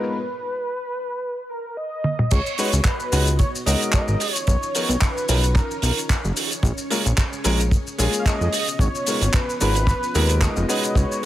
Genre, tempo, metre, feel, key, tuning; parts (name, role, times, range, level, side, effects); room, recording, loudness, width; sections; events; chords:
nu-disco, nu disco; 111 BPM; 4/4; swing 54% on 16ths; G# dorian; A4 = 441 Hz
wide unison lead; melody; 0.0-11.3 s; A#4 to E#5; -27 LUFS; equal; digital delay
warm grand piano; accompaniment; 0.0-11.3 s; E#3 to B4; -26 LUFS; left 2 dB
string machine, full ensemble; sustained chords; 0.0-11.3 s; G#3 to D#5; -34 LUFS; equal; ensemble chorus, sidechain pumping
damped 70s drum kit; drums; 0.0-11.3 s; crash cymbal, handclaps, hi-hat, shaker, toms; -24 LUFS; right 2 dB; low-pass filter on toms, low-pass filter on cymbals, low-pass filter on hats, low-pass filter on snare, low-pass filter on perc, low-pass filter on room
fat analog bass; bass; 2.3-11.0 s; E#1 to E#2; -20 LUFS; equal
kick drum; drums; 2.3-11.1 s; -20 LUFS; equal
small room ambience; low-pass filter; -19 LUFS; side -13 dB against mid
0.0-2.3 A section; 2.3-11.3 B section
filter sweep 0.0-2.3; break 0.1-2.3; drum fill 2.0; drop 2.3-11.3
0.0 G#m69; 2.3 C#9sus4; 4.2 Bmaj9#11; 6.6 A#m7; 8.5 G#m69